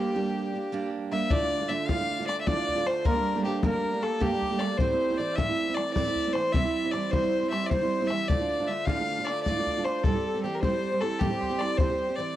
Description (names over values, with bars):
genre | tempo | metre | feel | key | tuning
celtic folk, Celtic slip jig | 103 BPM (dotted quarters) | 9/8 | straight | unclear | A4 = 438 Hz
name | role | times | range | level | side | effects
rich fiddle | melody | 0.0-12.4 s | G4 to F5 | -29 LUFS | left 2 dB | tape echo
Celtic harp | second line | 0.0-12.4 s | F4 to F5 | -38 LUFS | right 2 dB | none
accordion | second line | 0.0-12.4 s | G4 to F5 | -37 LUFS | left 2 dB | light tremolo tuning
picked steel-string acoustic guitar | accompaniment | 0.0-12.4 s | D2 to G4 | -30 LUFS | right 5 dB | none
bodhran | percussion | 1.3-11.9 s | none | -29 LUFS | left 2 dB | none
room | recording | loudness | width
light reverb | dry, close 1970s-style studio recording | -25 LUFS | side -13 dB against mid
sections
0.0-1.3 A section; 1.3-12.4 B section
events
none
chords
0.0 Gm; 1.3 Dm; 3.1 Gmadd9; 4.8 Am; 6.5 C; 8.3 Dm; 10.0 Am7; 11.8 C